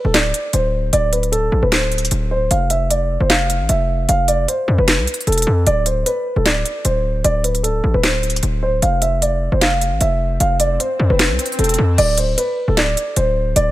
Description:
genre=hip hop, trap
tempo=152 BPM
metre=4/4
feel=half-time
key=D dorian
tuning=A4 = 441 Hz
part: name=dark concert grand piano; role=melody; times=0.0-13.7 s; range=A4 to F5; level=-19 LUFS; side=right 1 dB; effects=low-pass filter, digital delay
part: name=distorted 808-style bass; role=bass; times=0.0-13.7 s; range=D1 to F2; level=-18 LUFS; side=equal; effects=distortion
part: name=trap drum kit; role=drums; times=0.1-13.7 s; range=crash cymbal, handclaps, hi-hat, snare drum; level=-19 LUFS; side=equal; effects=none
part: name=swell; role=sound effects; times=10.2-12.0 s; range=none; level=-30 LUFS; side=left 2 dB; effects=none
room=little or no reverb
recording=none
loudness=-15 LUFS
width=side -15 dB against mid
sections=0.0-12.0 A section; 12.0-13.7 B section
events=swell 10.2-12.0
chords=0.0 D5; 2.5 N.C.; 5.7 D5; 8.8 N.C.; 12.0 D5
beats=0.14 0.54 | 0.93 1.32 1.72 2.11 | 2.51 2.90 3.30 3.69 | 4.09 4.48 4.88 5.27 | 5.67 6.06 6.46 6.85 | 7.25 7.64 8.04 8.43 | 8.82 9.22 9.61 10.01 | 10.40 10.80 11.19 11.59 | 11.98 12.38 12.77 13.17 | 13.56

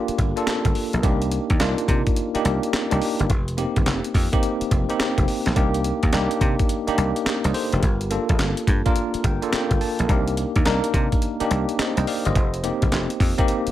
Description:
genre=R&B, new jack swing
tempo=106 BPM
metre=4/4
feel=swing 65% on 16ths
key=C dorian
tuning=A4 = 439 Hz
part: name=bell-like tine electric piano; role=accompaniment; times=0.0-13.7 s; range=Bb3 to A5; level=-24 LUFS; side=equal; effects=fast stereo tremolo
part: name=dry thumbed slap bass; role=bass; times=0.1-13.7 s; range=F1 to C3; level=-24 LUFS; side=equal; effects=none
part: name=breakbeat sampler-style drum kit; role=drums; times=0.1-13.7 s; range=handclaps, hi-hat, kick drum, snare drum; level=-22 LUFS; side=equal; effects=none
room=little or no reverb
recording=none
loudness=-19 LUFS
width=side -13 dB against mid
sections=0.0-13.7 A section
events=tine electric piano fill 9.0-10.1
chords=0.0 Gm7; 1.0 Cm7; 3.3 F9sus4; 5.6 Cm7; 7.8 Gm7; 10.1 Cm7; 12.4 F9sus4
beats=0.47 | 1.03 1.60 2.17 2.73 | 3.30 3.86 4.43 5.00 | 5.56 6.13 6.69 7.26 | 7.83 8.39 8.96 9.52 | 10.09 10.65 11.22 11.79 | 12.35 12.92 13.48

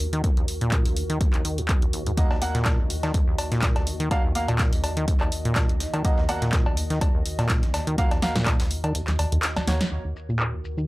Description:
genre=acid house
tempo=124 BPM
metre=4/4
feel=swing 55% on 16ths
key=Eb minor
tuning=A4 = 441 Hz
part: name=warbly tape-like pad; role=sustained chords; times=0.0-10.9 s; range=Eb2 to Eb5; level=-31 LUFS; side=equal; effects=chorus, built-in reverb, sidechain pumping
part: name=acid bass, saw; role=riff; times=0.0-10.9 s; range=Db2 to Eb3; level=-26 LUFS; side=equal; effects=cassette tape, sidechain pumping
part: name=punchy analog drum machine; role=drums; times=0.0-10.9 s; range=cowbell, handclaps, hi-hat, shaker, snare drum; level=-28 LUFS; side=equal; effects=low-pass filter on hats, low-pass filter on cymbals, low-pass filter on snare, low-pass filter on perc
part: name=electronic kick drum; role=drums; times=0.2-8.6 s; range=none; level=-23 LUFS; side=equal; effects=overdrive
part: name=clear concert grand piano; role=stabs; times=2.2-9.8 s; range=Bb3 to Gb5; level=-30 LUFS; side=right 1 dB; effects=tape echo
part: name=breakbeat sampler-style drum kit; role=drums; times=2.2-9.8 s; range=hi-hat, snare drum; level=-42 LUFS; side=equal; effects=none
room=little or no reverb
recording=dry, gritty hardware recording, transformer saturation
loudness=-21 LUFS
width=side -20 dB against mid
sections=0.0-9.9 A section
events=kick drops out 8.9-9.9; drum fill 9.6-9.9; band accent 9.8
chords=0.0 Ebm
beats=| 0.24 0.72 1.21 1.69 | 2.17 2.66 3.14 3.63 | 4.11 4.59 5.08 5.56 | 6.05 6.53 7.01 7.50 | 7.98 8.46 8.95 9.43 | 9.92 10.40

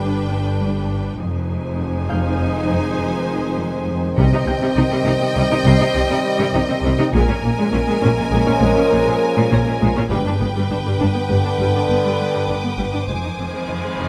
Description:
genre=cinematic, suspense film score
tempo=101 BPM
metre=5/4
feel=straight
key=unclear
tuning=A4 = 440 Hz
part: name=clear studio violin section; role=melody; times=0.0-14.1 s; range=G5 to Ab5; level=-31 LUFS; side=equal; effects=none
part: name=rich studio violin section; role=second line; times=0.0-14.1 s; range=Bb4 to Eb5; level=-29 LUFS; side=equal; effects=none
part: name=dark studio viola section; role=accompaniment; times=0.0-14.0 s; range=G3 to Eb4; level=-27 LUFS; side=equal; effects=none
part: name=dark French horn section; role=sustained chords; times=0.0-14.1 s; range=C4 to C5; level=-27 LUFS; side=equal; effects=none
part: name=warm trombone section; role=sustained chords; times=0.0-14.1 s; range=D3 to B3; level=-29 LUFS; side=equal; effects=none
part: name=rich studio cello section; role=riff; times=0.0-14.1 s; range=F2 to C4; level=-27 LUFS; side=equal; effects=none
part: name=rich studio cello section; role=bass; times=0.0-14.0 s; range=F2 to C3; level=-26 LUFS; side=equal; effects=none
part: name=rich symphonic double bass section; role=bass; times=0.0-14.0 s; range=F1 to C2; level=-26 LUFS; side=equal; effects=none
part: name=concert harp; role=texture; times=0.0-11.3 s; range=Ab4 to C7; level=-36 LUFS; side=equal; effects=none
part: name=timpani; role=percussion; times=4.2-5.0, 10.1-11.0 s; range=G2 to C3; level=-26 LUFS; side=equal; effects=none
part: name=rich studio violin section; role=texture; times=10.1-14.1 s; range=D6 to Eb6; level=-37 LUFS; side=equal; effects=none
part: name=reverse cymbal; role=sound effects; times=13.4-14.1 s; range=none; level=-33 LUFS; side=equal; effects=none
room=light reverb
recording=close, detailed microphones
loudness=-19 LUFS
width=mono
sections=0.0-14.1 A section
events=reverse cymbal 13.4-14.1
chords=0.0 G; 1.2 Fm7; 4.2 Cm; 7.1 Bbm7; 10.1 G; 13.1 Fm7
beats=0.01 0.61 | 1.20 1.79 2.39 2.98 3.58 | 4.17 4.76 5.36 5.95 6.55 | 7.14 7.74 8.33 8.92 9.52 | 10.11 10.71 11.30 11.89 12.49 | 13.08 13.68

